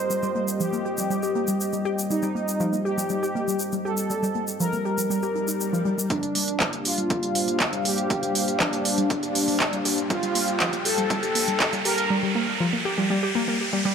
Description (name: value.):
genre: melodic techno.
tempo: 120 BPM.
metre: 4/4.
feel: straight.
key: G minor.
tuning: A4 = 440 Hz.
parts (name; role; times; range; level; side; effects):
analog synth brass; melody; 0.0-12.1 s; D4 to C5; -28 LUFS; left 1 dB; chorus, sidechain pumping, tape echo.
dark analog pad; sustained chords; 0.0-12.1 s; G3 to F5; -33 LUFS; equal; chorus, vintage 12-bit sampler grit, sidechain pumping.
warbly tape-like pad; texture; 0.0-12.1 s; G3 to G5; -31 LUFS; equal; chorus, built-in reverb, tremolo, sidechain pumping.
warbly dusty pluck; arpeggios; 0.1-13.9 s; F3 to G4; -28 LUFS; equal; chorus, sidechain pumping, tape echo.
egg shaker; percussion; 0.1-6.1 s; none; -33 LUFS; left 2 dB; tape echo.
swell and riser; sound effects; 5.3-13.9 s; none; -31 LUFS; right 2 dB; none.
electronic kick drum; drums; 6.1-11.7 s; none; -30 LUFS; equal; high-pass filter on kick, high-pass filter on room.
techno drum kit; drums; 6.1-12.1 s; handclaps, hi-hat; -24 LUFS; right 1 dB; none.
room: moderate echo chamber reverb, RT60 1.6 s, digital ambience.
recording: echo-heavy mix.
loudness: -22 LUFS.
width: side -7 dB against mid.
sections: 0.0-6.1 A section; 6.1-13.9 B section.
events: swell 5.3-6.1; build-up 6.1-13.9; filter sweep on synth arpeggio sound 6.1-13.9; riser 7.6-13.9.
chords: 0.0 Cm; 6.1 Gm7.